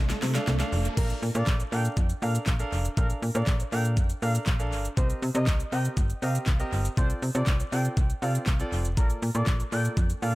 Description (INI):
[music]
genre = dance-pop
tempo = 120 BPM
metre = 4/4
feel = straight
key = Bb major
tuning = A4 = 436 Hz
[part]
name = clear baby grand piano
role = accompaniment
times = 0.0-10.3 s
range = Bb3 to F5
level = -35 LUFS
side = right 1 dB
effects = sidechain pumping
[part]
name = shimmering ambient pad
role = sustained chords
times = 0.0-1.0, 10.1-10.3 s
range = Bb3 to A4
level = -44 LUFS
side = right 3 dB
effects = none
[part]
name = slap-like FM bass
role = bass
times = 0.0-10.3 s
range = F1 to C3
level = -27 LUFS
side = equal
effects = sidechain pumping
[part]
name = riser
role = sound effects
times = 0.0-1.0 s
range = none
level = -38 LUFS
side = equal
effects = none
[part]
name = pop drum kit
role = drums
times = 0.1-10.3 s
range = crash cymbal, handclaps, hi-hat, kick drum, shaker, snare drum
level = -27 LUFS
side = equal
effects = tape echo
[part]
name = expressive portamento lead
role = melody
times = 1.0-10.3 s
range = Bb4 to G5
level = -35 LUFS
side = equal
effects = chorus, sidechain pumping, tape echo
[sound]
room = little or no reverb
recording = echo-heavy mix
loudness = -24 LUFS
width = side -19 dB against mid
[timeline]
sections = 1.0-10.3 A section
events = drum fill 0.0-1.0; riser 0.0-1.0; drop 1.0-10.3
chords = 0.0 F6/C; 1.0 Bbmaj7; 5.0 Cm7; 7.0 F6/C; 9.0 Bbmaj7